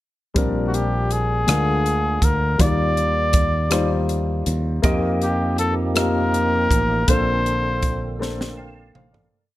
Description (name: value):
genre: slow gospel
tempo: 54 BPM (dotted quarters)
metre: 6/8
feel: straight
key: Bb major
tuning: A4 = 445 Hz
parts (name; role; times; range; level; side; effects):
- dark baby grand piano; accompaniment; 0.3-9.5 s; Bb2 to G5; -24 LUFS; left 2 dB; none
- modern bright fingered electric bass; bass; 0.4-9.3 s; A1 to F2; -23 LUFS; right 1 dB; none
- crisp fusion drum kit; drums; 0.4-9.3 s; hi-hat, kick drum, rim click, snare drum, toms; -21 LUFS; equal; none
- warm trumpet; melody; 0.7-8.2 s; Gb4 to D5; -22 LUFS; left 1 dB; none
- percussive tonewheel organ; sustained chords; 4.8-9.5 s; D3 to A5; -28 LUFS; right 4 dB; slow rotary speaker, chorus vibrato
room: small room ambience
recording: none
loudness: -18 LUFS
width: side -15 dB against mid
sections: 0.4-9.3 A section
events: fade-out 7.1-9.3; drum fill 8.2-9.3; tonewheel organ fill 8.2-9.3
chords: 0.4 Bb69; 1.5 Bb7/D; 2.6 Ebmaj9; 4.8 F9sus4; 7.1 Bbmaj9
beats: | 0.36 1.48 | 2.60 3.72 | 4.84 5.96 | 7.08 8.20